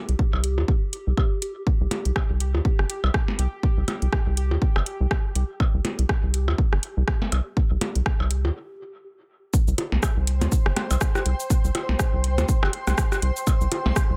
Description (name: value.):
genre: minimal techno.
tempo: 122 BPM.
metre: 4/4.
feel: swing 57% on 16ths.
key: unclear.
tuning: A4 = 440 Hz.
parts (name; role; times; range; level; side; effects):
pulsing gated texture; texture; 0.0-8.6 s; G4; -40 LUFS; equal; chorus, built-in reverb, sidechain pumping.
rubbery square bass; bass; 0.1-14.2 s; G1 to Eb2; -24 LUFS; equal; sidechain pumping.
house drum kit; drums; 0.1-14.1 s; hi-hat, rim click, shaker; -32 LUFS; equal; none.
electronic kick drum; drums; 0.2-14.1 s; none; -24 LUFS; equal; none.
electronic percussion blips and rim click; percussion; 0.3-13.9 s; none; -31 LUFS; equal; none.
granular cloud pad; texture; 10.2-14.2 s; C5 to C6; -35 LUFS; equal; built-in reverb, sidechain pumping.
room: little or no reverb.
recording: none.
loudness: -23 LUFS.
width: mono.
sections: 0.0-9.5 A section; 9.5-14.2 B section.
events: stop 8.6-9.5; drop 9.5-14.2.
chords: 0.0 C5.